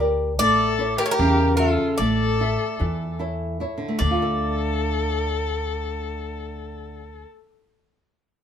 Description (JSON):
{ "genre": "greek folk, Greek bouzouki band", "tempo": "151 BPM (eighths)", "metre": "9/8", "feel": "straight", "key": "D harmonic minor", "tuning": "A4 = 440 Hz", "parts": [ { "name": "flamenco guitar", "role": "accompaniment", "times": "0.0-7.4 s", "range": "C#3 to E5", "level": "-26 LUFS", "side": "equal", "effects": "none" }, { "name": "upright bass", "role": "bass", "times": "0.0-7.2 s", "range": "A1 to E2", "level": "-26 LUFS", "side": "equal", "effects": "none" }, { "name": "Greek bouzouki", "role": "melody", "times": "0.4-7.2 s", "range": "A4 to D5", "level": "-23 LUFS", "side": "equal", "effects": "none" }, { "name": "warm violin", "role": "second line", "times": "0.4-7.2 s", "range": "F4 to A4", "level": "-28 LUFS", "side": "left 5 dB", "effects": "none" } ], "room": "light reverb", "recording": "minimal, uncompressed stereo recording", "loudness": "-20 LUFS", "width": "side -8 dB against mid", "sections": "0.0-4.0 A section; 4.0-7.6 B section", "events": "none", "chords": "0.4 A; 4.0 Dm" }